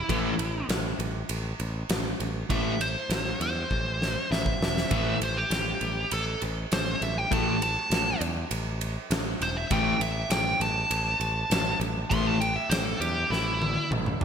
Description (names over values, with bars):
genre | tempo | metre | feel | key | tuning
hard rock | 100 BPM | 4/4 | straight | unclear | A4 = 442 Hz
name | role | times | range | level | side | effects
nasal lead guitar with a parked wah | melody | 0.0-13.9 s | E4 to C6 | -29 LUFS | equal | overdrive
sludgy distorted guitar | riff | 0.1-12.4 s | A2 to A3 | -33 LUFS | left 11 dB | overdrive
sludgy distorted guitar | riff | 0.1-12.4 s | A2 to A3 | -34 LUFS | right 9 dB | overdrive
modern bright picked electric bass | bass | 0.1-14.2 s | E1 to E2 | -32 LUFS | equal | none
huge arena drum kit | drums | 0.1-14.2 s | kick drum, ride cymbal, snare drum, toms | -30 LUFS | equal | gated reverb
room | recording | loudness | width
moderate lush hall reverb, RT60 1.8 s, small room reverb | bright 1980s-style digital production | -25 LUFS | side -7 dB against mid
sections
0.0-14.2 A section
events
lead electric guitar solo 0.0-14.2; drum fill 3.7-4.9, 13.3-14.2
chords
0.0 A5